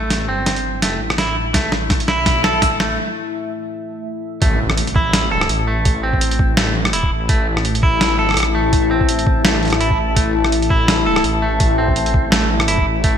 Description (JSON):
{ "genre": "half-time drum and bass", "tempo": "167 BPM", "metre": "4/4", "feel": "swing 56% on 16ths, half-time", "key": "A minor", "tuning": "A4 = 440 Hz", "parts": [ { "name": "dark analog pad", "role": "sustained chords", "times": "0.0-13.2 s", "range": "A3 to A5", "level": "-23 LUFS", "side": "left 4 dB", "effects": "chorus, phaser, sidechain pumping" }, { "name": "clean electric guitar", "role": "arpeggios", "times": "0.0-13.2 s", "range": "A3 to A4", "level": "-20 LUFS", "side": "right 2 dB", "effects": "vintage 12-bit sampler grit, low-pass filter, ping-pong delay" }, { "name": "dark detuned saw bass", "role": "bass", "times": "0.0-13.2 s", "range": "G1 to B1", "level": "-21 LUFS", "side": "equal", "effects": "none" }, { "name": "boom bap sampler-style drum kit", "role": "drums", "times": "0.1-13.1 s", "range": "hi-hat, rim click, snare drum", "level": "-20 LUFS", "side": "equal", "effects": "small room ambience, gated reverb" }, { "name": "electronic kick drum", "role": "drums", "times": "1.5-13.1 s", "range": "none", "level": "-17 LUFS", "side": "equal", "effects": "small room ambience" }, { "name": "impact", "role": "sound effects", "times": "4.4-5.9 s", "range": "none", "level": "-27 LUFS", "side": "equal", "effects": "none" } ], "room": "moderate lush hall reverb, RT60 1.9 s", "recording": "bright 1980s-style digital production", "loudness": "-14 LUFS", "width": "side -8 dB against mid", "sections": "0.0-4.4 A section; 4.4-13.2 B section", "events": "build-up 0.0-4.4; drum fill 0.0-3.0; break 3.0-4.4; drop 4.4-13.2; impact 4.4-5.9", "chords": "0.0 A5", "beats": "| 0.10 0.47 0.82 1.18 | 1.54 1.90 2.26 2.62 | 2.98 3.34 3.70 4.06 | 4.42 4.78 5.13 5.50 | 5.85 6.21 6.57 6.93 | 7.29 7.65 8.01 8.37 | 8.73 9.09 9.45 9.81 | 10.16 10.52 10.88 11.24 | 11.60 11.96 12.32 12.68 | 13.04" }